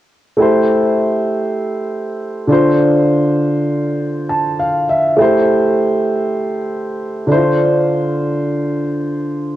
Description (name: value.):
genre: afrobeats.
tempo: 100 BPM.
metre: 4/4.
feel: swing 58% on 16ths.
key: A minor.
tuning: A4 = 438 Hz.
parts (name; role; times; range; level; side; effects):
dark baby grand piano; accompaniment; 0.4-9.6 s; D3 to A5; -13 LUFS; equal; cassette tape.
room: moderate spring reverb, RT60 1.9 s, small room ambience.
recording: home recording on cassette.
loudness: -13 LUFS.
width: side -14 dB against mid.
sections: 0.4-9.6 A section.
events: grand piano fill 4.0-5.2.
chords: 0.4 Am7; 2.5 Dm7; 5.2 Am7; 7.3 Dm7.